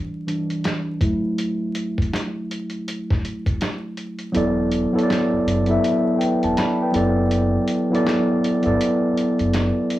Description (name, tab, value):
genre	lo-fi hip hop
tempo	81 BPM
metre	4/4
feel	swing 62% on 16ths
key	E minor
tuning	A4 = 438 Hz
part	mellow tine electric piano	accompaniment	0.0-10.0 s	E3 to B5	-20 LUFS	equal	cassette tape, low-pass filter
part	lo-fi sampler-style drum kit	drums	0.3-10.0 s	hi-hat, kick drum, snare drum	-25 LUFS	equal	overdrive, vintage 12-bit sampler grit, cassette tape
part	sub bass with octave	bass	4.3-9.7 s	E1 to G1	-24 LUFS	equal	none
room	light reverb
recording	home recording on cassette, vinyl crackle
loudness	-19 LUFS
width	side -15 dB against mid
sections	0.0-4.3 A section; 4.3-10.0 B section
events	tine electric piano solo 0.0-4.3; kick muted 4.3-10.0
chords	0.0 Em7; 1.0 F#m7; 4.3 E5; 6.9 Gmaj13/F#